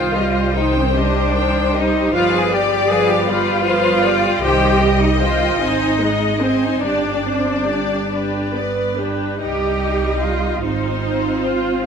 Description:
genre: classical, slow romantic movement for string orchestra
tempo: 46-53 BPM (dotted quarters)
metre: 6/8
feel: rubato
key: C minor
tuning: A4 = 443 Hz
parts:
  - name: clear chamber violin section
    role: melody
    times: 0.0-11.8 s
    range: B4 to Ab5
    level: -27 LUFS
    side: left 5 dB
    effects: none
  - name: rich studio violin section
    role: second line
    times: 0.0-11.9 s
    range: B4 to Eb5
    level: -23 LUFS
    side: left 4 dB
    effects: none
  - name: rich chamber viola section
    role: accompaniment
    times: 0.0-11.9 s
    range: Eb3 to C5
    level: -21 LUFS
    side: right 1 dB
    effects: none
  - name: rich chamber double bass section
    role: bass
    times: 0.0-11.9 s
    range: G1 to C2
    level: -22 LUFS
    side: right 2 dB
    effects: none
  - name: rich studio cello section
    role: bass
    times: 0.0-11.8 s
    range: C4 to Ab4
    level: -19 LUFS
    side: right 1 dB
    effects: none
room: moderate concert hall reverb, RT60 2.3 s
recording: none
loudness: -15 LUFS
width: side -6 dB against mid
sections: 0.0-11.9 A section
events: none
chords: 0.0 Cm; 2.1 G7; 4.4 Cm; 5.6 Ab; 6.8 Gsus4; 8.1 G; 9.4 Cm; 10.6 Fm/Ab

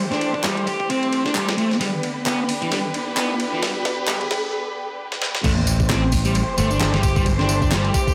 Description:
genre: breakbeat, breaks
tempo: 132 BPM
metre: 4/4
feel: swing 57% on 16ths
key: A minor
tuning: A4 = 442 Hz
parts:
  - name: warm symphonic string section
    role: sustained chords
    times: 0.0-8.1 s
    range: D3 to C5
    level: -28 LUFS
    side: equal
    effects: sidechain pumping
  - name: riser and sub drop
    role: sound effects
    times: 1.0-7.3 s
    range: none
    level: -34 LUFS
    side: equal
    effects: none
  - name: thick fuzz guitar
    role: riff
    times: 0.1-8.1 s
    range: E3 to G4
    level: -26 LUFS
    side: equal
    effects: distortion, overdrive, low-pass filter, delay
  - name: dusty soul sampler-style drum kit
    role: drums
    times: 0.1-8.1 s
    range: crash cymbal, hi-hat, kick drum, ride cymbal, snare drum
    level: -27 LUFS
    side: equal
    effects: high-pass filter on cymbals, studio reverb, high-pass filter on hats, high-pass filter on snare, high-pass filter on kick
  - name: electronic handclaps and tambourine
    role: drums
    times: 0.4-8.1 s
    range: none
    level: -30 LUFS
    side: equal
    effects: high-pass filter on perc, studio reverb, high-pass filter on snare, high-pass filter on room
  - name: modern bright picked electric bass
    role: bass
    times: 5.4-7.9 s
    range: G1 to A1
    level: -23 LUFS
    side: equal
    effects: none
room: moderate small room reverb, RT60 0.5 s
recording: high-pass filter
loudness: -21 LUFS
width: mono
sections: 0.0-5.4 A section; 5.4-8.1 B section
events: build-up 0.0-5.4; filter sweep on distorted electric guitar 0.0-5.4; riser 1.0-4.5; drum fill 1.8-4.5, 5.1-5.4; break 4.5-5.4; drop 5.4-8.1; impact 5.4-7.3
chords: 0.0 Am7; 1.8 G; 5.4 Am7

